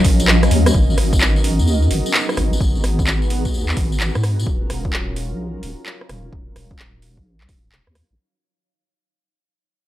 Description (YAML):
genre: UK garage, two-step garage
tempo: 129 BPM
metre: 4/4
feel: swing 65% on 16ths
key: G# dorian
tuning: A4 = 442 Hz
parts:
  - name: string-like resonator pluck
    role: melody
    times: 0.0-0.7 s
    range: none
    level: barely audible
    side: none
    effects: none
  - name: warm analog pad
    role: sustained chords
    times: 0.0-8.2 s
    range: F#3 to B4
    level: -30 LUFS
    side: right 1 dB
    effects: chorus, sidechain pumping
  - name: deep soft wobble bass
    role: bass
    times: 0.0-8.2 s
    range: D#1 to G#2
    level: -19 LUFS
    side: equal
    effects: chorus, sidechain pumping
  - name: electronic kick drum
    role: drums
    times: 0.0-7.6 s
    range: none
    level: -20 LUFS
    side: equal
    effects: small room ambience
  - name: garage drum kit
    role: drums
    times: 0.0-8.1 s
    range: handclaps, hi-hat, rim click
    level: -21 LUFS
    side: equal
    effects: overdrive, small room ambience
  - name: granular cloud pad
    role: texture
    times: 0.0-8.2 s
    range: F#3 to A#5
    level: -25 LUFS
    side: left 1 dB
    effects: built-in reverb, sidechain pumping
  - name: tambourine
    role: percussion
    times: 0.2-4.5 s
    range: none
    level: -31 LUFS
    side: left 3 dB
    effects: none
room: digital ambience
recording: dry, gritty hardware recording, transformer saturation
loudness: -15 LUFS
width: side -14 dB against mid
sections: 0.7-8.2 A section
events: kick drops out 0.3-0.7; drum fill 0.3-0.7; fade-out on ambient pad 0.7-8.2; fade-out 0.7-8.2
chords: 0.0 D#m9; 0.7 G#m9; 4.5 D#m9